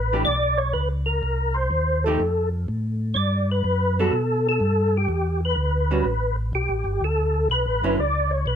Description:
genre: jazz.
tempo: 124 BPM.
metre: 4/4.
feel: swing 68% on 8ths.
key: D major.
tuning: A4 = 440 Hz.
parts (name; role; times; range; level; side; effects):
percussive tonewheel organ; melody; 0.0-8.6 s; G4 to D5; -23 LUFS; left 1 dB; slow rotary speaker, chorus vibrato, plate reverb.
mellow tonewheel organ; bass; 0.0-8.6 s; F#1 to B2; -24 LUFS; equal; slow rotary speaker.
archtop guitar, miked and amplified; accompaniment; 0.1-8.0 s; D3 to A4; -25 LUFS; right 4 dB; none.
room: light reverb.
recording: none.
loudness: -20 LUFS.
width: side -8 dB against mid.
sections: 0.0-8.6 A section.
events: none.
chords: 0.0 E7(no3) (rootless); 1.2 Cm; 2.2 F; 3.2 Gmaj9; 5.1 Em7; 6.1 Asus2; 7.0 Dmaj7.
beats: 0.27 0.75 | 1.24 1.72 2.20 2.68 | 3.17 3.65 4.13 4.61 | 5.09 5.58 6.06 6.54 | 7.02 7.51 7.99 8.47.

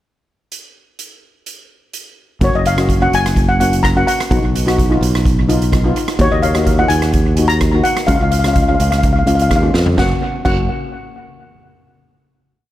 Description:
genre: calypso.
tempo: 127 BPM.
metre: 4/4.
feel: straight.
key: F# major.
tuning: A4 = 440 Hz.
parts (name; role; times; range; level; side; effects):
street-band drum kit; drums; 0.5-10.6 s; crash cymbal, hi-hat, kick drum, rim click, snare drum, toms; -18 LUFS; equal; none.
steel pan; melody; 2.4-10.7 s; C#5 to A#5; -18 LUFS; left 2 dB; analog delay.
steel pan; accompaniment; 2.4-10.7 s; G#3 to F#4; -20 LUFS; left 1 dB; analog delay.
modern bright fingered electric bass; bass; 2.4-10.7 s; F#1 to E#2; -16 LUFS; equal; none.
room: light reverb, studio ambience.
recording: echo-heavy mix.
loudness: -12 LUFS.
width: side -14 dB against mid.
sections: 0.5-2.4 pickup bar; 2.4-10.0 verse; 10.0-11.9 final chord.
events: drum fill 9.7.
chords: 0.5 N.C.; 2.4 F#; 4.3 B; 6.2 D#m; 8.1 C#; 10.0 F#.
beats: | 0.51 0.98 1.46 1.94 | 2.41 2.88 3.36 3.83 | 4.31 4.78 5.25 5.72 | 6.20 6.67 7.14 7.62 | 8.09 8.56 9.04 9.51 | 9.98 10.46.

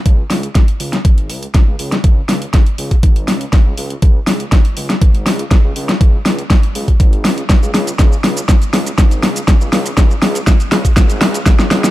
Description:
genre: progressive house.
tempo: 121 BPM.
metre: 4/4.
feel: straight.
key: unclear.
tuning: A4 = 440 Hz.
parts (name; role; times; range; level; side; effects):
dark detuned saw bass; bass; 0.1-11.9 s; G#1 to C#2; -24 LUFS; equal; sidechain pumping, high-pass filter.
electronic kick drum; drums; 0.1-11.6 s; none; -10 LUFS; equal; overdrive.
pop drum kit; drums; 0.1-11.9 s; hi-hat, shaker, snare drum; -16 LUFS; left 1 dB; overdrive.
room: little or no reverb.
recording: none.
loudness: -11 LUFS.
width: side -16 dB against mid.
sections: 0.0-11.9 A section.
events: build-up 0.0-11.9; drum fill 0.0-11.9.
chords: none.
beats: 0.06 0.55 1.05 | 1.54 2.04 2.54 3.03 | 3.53 4.03 4.52 5.02 | 5.51 6.01 6.50 7.00 | 7.50 7.99 8.49 8.98 | 9.48 9.97 10.47 10.97 | 11.46.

